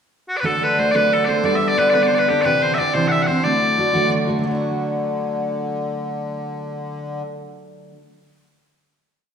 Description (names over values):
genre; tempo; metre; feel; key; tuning
celtic folk, Celtic jig; 120 BPM (dotted quarters); 6/8; straight; D mixolydian; A4 = 441 Hz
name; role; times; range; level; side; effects
loud bright bagpipes; melody; 0.3-4.1 s; F#4 to F#5; -19 LUFS; equal; none
picked steel-string acoustic guitar; accompaniment; 0.4-8.0 s; C3 to A4; -20 LUFS; equal; none
musette accordion; drone; 0.4-7.2 s; D3; -28 LUFS; left 1 dB; none
room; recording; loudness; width
wet recital hall reverb, RT60 1.5 s; recorded in a church or concert hall; -17 LUFS; side -7 dB against mid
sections
0.0-0.4 pickup bar; 0.4-4.4 A section; 4.4-6.4 final chord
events
none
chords
0.4 D; 1.4 Gadd9; 2.4 Cadd9; 3.4 D